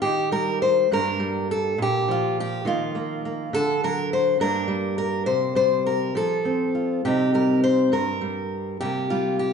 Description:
folk, solo fingerstyle acoustic guitar; 68 BPM (dotted quarters); 6/8; straight; A4 = 436 Hz
fingerpicked steel-string acoustic guitar; solo; 0.0-9.5 s; G2 to C5; -21 LUFS; equal
wet large studio reverb, RT60 1.3 s; band playing live in one room, nothing above 10.4 kHz; -21 LUFS; side -6 dB against mid
0.0-9.5 A section
0.0 Eb; 0.9 Gm; 1.8 Bb; 2.6 Ebsus2; 3.5 D; 4.4 Gm; 5.3 C5; 6.1 F; 7.0 Cm; 7.9 N.C.; 8.8 C5
| 0.02 0.90 | 1.77 2.65 | 3.52 4.39 | 5.26 6.14 | 7.03 7.92 | 8.80

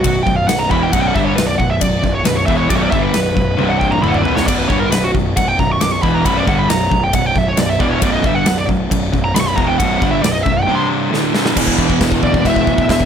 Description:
heavy metal; 136 BPM; 4/4; straight; B minor; A4 = 439 Hz
high-gain lead guitar; melody; 0.0-13.1 s; F#4 to D6; -18 LUFS; right 2 dB; distortion
distorted electric guitar; riff; 0.0-13.1 s; B1 to G3; -20 LUFS; left 10 dB; distortion
fuzz picked electric bass; bass; 0.0-13.1 s; B0 to G1; -21 LUFS; equal; overdrive
big rock drum kit; drums; 0.0-13.1 s; china cymbal, crash cymbal, kick drum, ride cymbal, snare drum, splash cymbal, toms; -19 LUFS; equal
sludgy distorted guitar; riff; 0.1-13.1 s; B1 to G3; -20 LUFS; right 11 dB; overdrive
little or no reverb; -13 LUFS; side -8 dB against mid
0.0-11.6 A section; 11.6-13.1 B section
lead electric guitar solo 0.0-11.6; drum fill 3.6-4.5, 11.1-11.6
0.0 Bm; 3.6 C5; 4.0 Bm; 10.7 C5; 11.1 Bm; 11.6 E5
0.05 0.49 | 0.94 1.38 1.82 2.27 | 2.71 3.15 3.60 4.04 | 4.48 4.93 5.37 5.81 | 6.25 6.70 7.14 7.58 | 8.03 8.47 8.91 9.35 | 9.79 10.23 10.68 11.12 | 11.56 12.00 12.44 12.88

